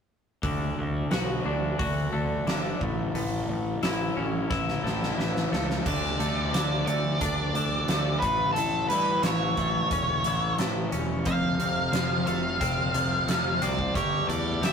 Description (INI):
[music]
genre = quiet-loud alternative rock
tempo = 89 BPM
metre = 4/4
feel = straight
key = unclear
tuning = A4 = 441 Hz
[part]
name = twelve-string electric guitar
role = arpeggios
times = 0.4-14.7 s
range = F2 to F#4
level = -31 LUFS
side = left 3 dB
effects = analog delay
[part]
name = fuzz picked electric bass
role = bass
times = 0.4-14.7 s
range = E1 to G2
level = -30 LUFS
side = equal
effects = overdrive
[part]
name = huge arena drum kit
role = drums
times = 0.4-14.7 s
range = crash cymbal, hi-hat, kick drum, snare drum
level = -30 LUFS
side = right 1 dB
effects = none
[part]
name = octave-fuzz lead guitar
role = melody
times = 5.9-14.7 s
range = A4 to F5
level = -28 LUFS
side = right 1 dB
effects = distortion
[sound]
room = moderate stone room reverb, RT60 1.1 s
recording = rough rehearsal-room recording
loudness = -24 LUFS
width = side -6 dB against mid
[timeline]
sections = 0.4-5.9 A section; 5.9-14.7 B section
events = drum fill 4.5-5.9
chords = 0.4 D; 2.8 A; 5.9 D5; 8.2 A; 11.3 F; 14.0 Gsus2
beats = | 0.43 1.11 1.79 2.47 | 3.15 3.83 4.50 5.18 | 5.86 6.54 7.21 7.89 | 8.56 9.24 9.91 10.59 | 11.26 11.94 12.61 13.29 | 13.96 14.63